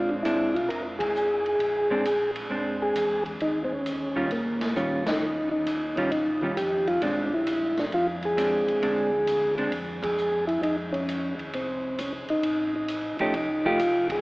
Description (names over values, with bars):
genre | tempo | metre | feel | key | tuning
soul jazz organ trio | 133 BPM | 4/4 | swing 68% on 8ths | Bb mixolydian | A4 = 440 Hz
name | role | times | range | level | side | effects
percussive tonewheel organ | melody | 0.0-14.2 s | Bb3 to Bb4 | -25 LUFS | equal | slow rotary speaker
hollow-body jazz guitar | accompaniment | 0.0-9.7, 13.2-13.8 s | Eb3 to G4 | -30 LUFS | right 1 dB | none
mellow tonewheel organ | bass | 0.0-14.2 s | F1 to F2 | -42 LUFS | equal | chorus vibrato, slow rotary speaker
swinging big-band drum kit | drums | 0.2-14.2 s | hi-hat, kick drum, ride cymbal, snare drum | -35 LUFS | equal | none
room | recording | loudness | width
wet cathedral reverb, RT60 6.5 s | recorded in a church or concert hall, AM radio sound | -24 LUFS | side -23 dB against mid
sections
0.0-14.2 A section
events
band accent 0.9, 5.0, 9.9, 14.0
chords
0.0 Bb9; 3.4 Eb9; 7.0 Bb9; 10.6 F7